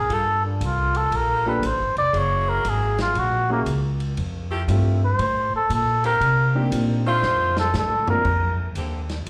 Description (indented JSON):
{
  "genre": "jazz, big band swing",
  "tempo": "118 BPM",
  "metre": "4/4",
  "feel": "swing 66% on 8ths",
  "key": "F major",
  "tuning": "A4 = 441 Hz",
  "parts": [
    { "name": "trumpet with cup mute", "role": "melody", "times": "0.0-8.6 s", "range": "Bb3 to D5", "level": "-24 LUFS", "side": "equal", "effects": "slapback echo" },
    { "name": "upright bass", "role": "bass", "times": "0.0-9.3 s", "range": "F1 to C3", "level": "-26 LUFS", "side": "equal", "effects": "none" },
    { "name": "bright saxophone section", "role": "sustained chords", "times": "0.1-9.0 s", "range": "D3 to A4", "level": "-35 LUFS", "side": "equal", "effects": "none" },
    { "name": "swinging big-band drum kit", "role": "drums", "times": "0.1-9.3 s", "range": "crash cymbal, hi-hat, kick drum, ride cymbal, snare drum, toms", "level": "-37 LUFS", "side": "equal", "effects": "none" },
    { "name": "warm grand piano", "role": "accompaniment", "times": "1.5-8.2 s", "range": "A3 to Bb4", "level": "-29 LUFS", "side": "equal", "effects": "slapback echo" }
  ],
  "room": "light reverb, small room ambience",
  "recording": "live gig heard through the venue's PA, club reverb",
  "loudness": "-22 LUFS",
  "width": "mono",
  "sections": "0.0-8.3 A section; 8.3-9.3 A section",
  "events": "muted trumpet solo 0.0-9.3; drum fill 7.2-8.3",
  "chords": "0.1 Gm9; 2.1 Gb9; 4.2 Fmaj9; 6.2 Cm7; 7.2 F7; 8.3 Bb69"
}